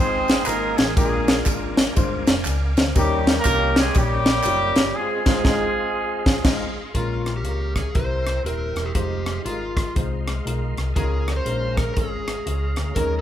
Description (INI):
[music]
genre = uptempo gospel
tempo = 120 BPM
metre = 4/4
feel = swing 63% on 8ths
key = unclear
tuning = A4 = 440 Hz
[part]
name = warm horn section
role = melody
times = 0.0-6.7 s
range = G3 to C5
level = -22 LUFS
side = right 1 dB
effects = none
[part]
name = clear grand piano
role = accompaniment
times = 0.0-13.2 s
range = Ab2 to Ab5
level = -29 LUFS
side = left 3 dB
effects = none
[part]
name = tonewheel organ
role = sustained chords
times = 0.0-13.2 s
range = Ab3 to Eb6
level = -34 LUFS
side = equal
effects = fast rotary speaker, chorus vibrato
[part]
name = hollow-body short-scale fingered electric bass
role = bass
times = 0.0-13.2 s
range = Eb1 to Eb2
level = -26 LUFS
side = equal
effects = none
[part]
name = tight funk drum kit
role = drums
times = 0.3-13.1 s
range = crash cymbal, hi-hat, kick drum, ride cymbal, rim click, snare drum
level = -21 LUFS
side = equal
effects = none
[part]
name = tambourine and handclaps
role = percussion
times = 0.3-4.8 s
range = none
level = -34 LUFS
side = equal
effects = none
[part]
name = overdriven slide guitar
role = melody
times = 7.0-13.2 s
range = F4 to Db5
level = -28 LUFS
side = equal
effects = none
[sound]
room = moderate large studio reverb, RT60 1.2 s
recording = band playing live in one room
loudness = -19 LUFS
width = side -11 dB against mid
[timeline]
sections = 0.0-6.9 A section; 6.9-13.2 B section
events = band accent 5.0-6.9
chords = 0.0 Fm7; 1.0 Bb7; 3.0 Eb7; 5.0 Ab6; 6.9 Bbm7; 7.9 C7; 9.0 Fm7; 11.0 Db6